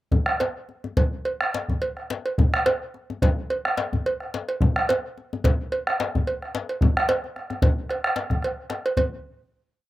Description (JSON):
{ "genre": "west african traditional, West African drum ensemble", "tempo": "108 BPM", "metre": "4/4", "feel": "swing 55% on 16ths", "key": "none", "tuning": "none", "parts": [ { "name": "bombo", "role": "percussion", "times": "0.1-9.2 s", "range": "none", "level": "-23 LUFS", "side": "equal", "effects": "none" }, { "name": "djembe", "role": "percussion", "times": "0.1-9.2 s", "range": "none", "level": "-28 LUFS", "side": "left 4 dB", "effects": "none" }, { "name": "cowbell", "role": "percussion", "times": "0.4-9.2 s", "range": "none", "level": "-25 LUFS", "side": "right 2 dB", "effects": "none" } ], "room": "light reverb", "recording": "recorded outdoors, with no room sound", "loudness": "-22 LUFS", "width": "side -16 dB against mid", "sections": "0.1-9.0 A section; 9.0-9.9 final hit", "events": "speeding up 0.1-9.9", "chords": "none" }